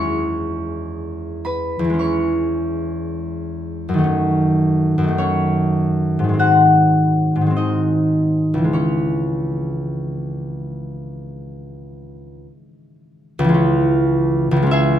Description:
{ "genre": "classical, solo harp piece", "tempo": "47-57 BPM", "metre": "4/4", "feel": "rubato", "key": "C# minor", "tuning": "A4 = 442 Hz", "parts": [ { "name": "concert harp", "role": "solo", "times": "0.0-15.0 s", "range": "C#2 to C#6", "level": "-16 LUFS", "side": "equal", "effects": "none" } ], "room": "moderate large studio reverb, RT60 1.3 s", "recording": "close, detailed microphones", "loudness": "-16 LUFS", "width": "side -10 dB against mid", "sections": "0.0-13.6 A section; 13.6-15.0 B section", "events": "none", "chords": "0.0 C#m/E; 4.1 D#m7b5/F#; 6.4 G#7; 8.8 C#m", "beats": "0.92 1.99 3.04 | 4.09 5.18 6.41 7.57 | 8.75 9.98 11.23 12.43 | 13.60 14.71" }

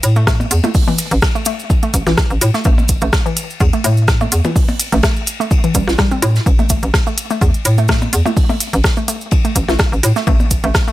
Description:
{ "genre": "minimal techno", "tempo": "126 BPM", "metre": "4/4", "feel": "swing 54% on 16ths", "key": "unclear", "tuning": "A4 = 441 Hz", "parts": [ { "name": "hollow knocking FM bass", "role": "bass", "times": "0.0-10.7 s", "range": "A1 to A2", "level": "-15 LUFS", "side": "equal", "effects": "sidechain pumping" }, { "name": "techno drum kit", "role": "drums", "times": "0.0-10.8 s", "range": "hi-hat, rim click", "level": "-18 LUFS", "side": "equal", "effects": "none" }, { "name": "unplugged drum kit", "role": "drums", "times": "0.0-10.9 s", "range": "hi-hat, ride cymbal, snare drum", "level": "-27 LUFS", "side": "left 2 dB", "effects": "sidechain pumping on cymbals, high-pass filter on cymbals, sidechain pumping on hats, high-pass filter on hats, high-pass filter on snare, high-pass filter on room" }, { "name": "cabasa", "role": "percussion", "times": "0.0-10.9 s", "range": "none", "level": "-26 LUFS", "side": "right 2 dB", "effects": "none" }, { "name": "hollow square pluck", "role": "riff", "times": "0.2-10.9 s", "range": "E3 to E4", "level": "-21 LUFS", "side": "equal", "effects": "chorus, sidechain pumping, tape echo" }, { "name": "electronic kick drum", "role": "drums", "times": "0.3-10.8 s", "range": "none", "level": "-15 LUFS", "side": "equal", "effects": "none" }, { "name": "percussion blips", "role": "percussion", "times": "0.4-10.5 s", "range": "none", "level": "-22 LUFS", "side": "equal", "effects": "tape echo" } ], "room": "little or no reverb", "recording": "none", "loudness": "-12 LUFS", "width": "side -16 dB against mid", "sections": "0.0-10.9 A section", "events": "none", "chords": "none", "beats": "0.27 | 0.75 1.22 1.70 2.18 | 2.65 3.13 3.60 4.08 | 4.56 5.03 5.51 5.99 | 6.46 6.94 7.41 7.89 | 8.37 8.84 9.32 9.79 | 10.27 10.75" }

